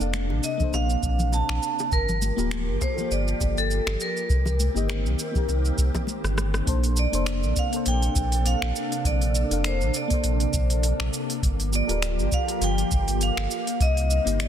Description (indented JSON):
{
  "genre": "sunset chillout",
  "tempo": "101 BPM",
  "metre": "4/4",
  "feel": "swing 56% on 16ths",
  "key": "Bb major",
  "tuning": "A4 = 445 Hz",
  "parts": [
    { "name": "vibraphone with hard mallets", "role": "melody", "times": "0.0-14.5 s", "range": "A4 to A5", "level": "-29 LUFS", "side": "right 2 dB", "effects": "tape echo" },
    { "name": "mellow FM electric piano", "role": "accompaniment", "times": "0.0-14.5 s", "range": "Bb3 to F5", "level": "-32 LUFS", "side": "moving between left 6 dB and right 2 dB", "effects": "chorus, phaser, auto-pan, tape echo" },
    { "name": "soft string machine", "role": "sustained chords", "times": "0.0-14.5 s", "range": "C3 to A4", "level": "-32 LUFS", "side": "left 1 dB", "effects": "phaser, ensemble chorus" },
    { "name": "warm sub bass", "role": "bass", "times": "0.0-14.5 s", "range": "D1 to C2", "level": "-25 LUFS", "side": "equal", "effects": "none" },
    { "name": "smooth R&B drum kit", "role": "drums", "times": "0.0-14.5 s", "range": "finger snaps, hi-hat, rim click, shaker", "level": "-32 LUFS", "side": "right 1 dB", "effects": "soft clipping on snare" },
    { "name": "congas and bongos", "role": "percussion", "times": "0.1-6.6 s", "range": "none", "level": "-35 LUFS", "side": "left 2 dB", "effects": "none" },
    { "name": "electronic kick drum", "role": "drums", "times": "0.6-13.9 s", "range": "none", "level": "-26 LUFS", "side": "equal", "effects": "none" }
  ],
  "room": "digital ambience",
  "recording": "dense, heavily limited modern master",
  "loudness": "-22 LUFS",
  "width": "side -9 dB against mid",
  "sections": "0.0-6.7 A section; 6.7-14.5 B section",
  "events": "drum fill 6.2-6.7",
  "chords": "0.0 Bbmaj9; 1.9 Gm9; 4.3 Cm7; 6.7 Bbmaj9; 11.4 Gm9; 13.8 Cm7"
}